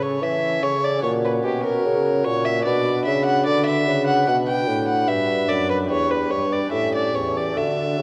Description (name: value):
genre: classical, baroque-style sonata movement with continuo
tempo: 74 BPM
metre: 4/4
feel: straight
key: B minor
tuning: A4 = 440 Hz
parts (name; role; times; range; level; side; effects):
- warm violin; melody; 0.0-8.0 s; G4 to G5; -25 LUFS; equal; none
- pipe organ, flutes; accompaniment; 0.0-8.0 s; E2 to C#5; -27 LUFS; equal; none
- mellow bassoon; bass; 0.0-8.0 s; E2 to E3; -26 LUFS; equal; none
room: wet concert hall reverb, RT60 2.1 s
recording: none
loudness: -21 LUFS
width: mono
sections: 0.0-8.0 A section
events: none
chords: 0.0 A; 1.0 F#/A#; 2.7 Bm; 5.9 Em7; 6.7 A7